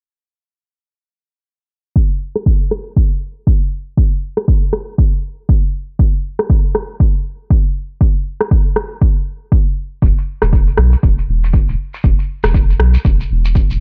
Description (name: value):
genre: afro house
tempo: 119 BPM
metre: 4/4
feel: swing 58% on 16ths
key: unclear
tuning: A4 = 440 Hz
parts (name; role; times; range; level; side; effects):
- electronic kick drum; drums; 2.0-13.7 s; none; -15 LUFS; equal; overdrive, small room ambience
- electronic rim click; drums; 2.4-12.9 s; none; -21 LUFS; equal; overdrive, low-pass filter on snare, small room ambience
- round analog bass; bass; 10.0-13.8 s; E1 to B1; -16 LUFS; equal; sidechain pumping
- shekere; percussion; 10.0-13.8 s; none; -37 LUFS; equal; none
room: digital ambience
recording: dark, warm production, low-pass filter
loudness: -15 LUFS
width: mono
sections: 2.0-13.8 A section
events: filter sweep on drum 2.0-13.8; filter sweep 2.0-13.8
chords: none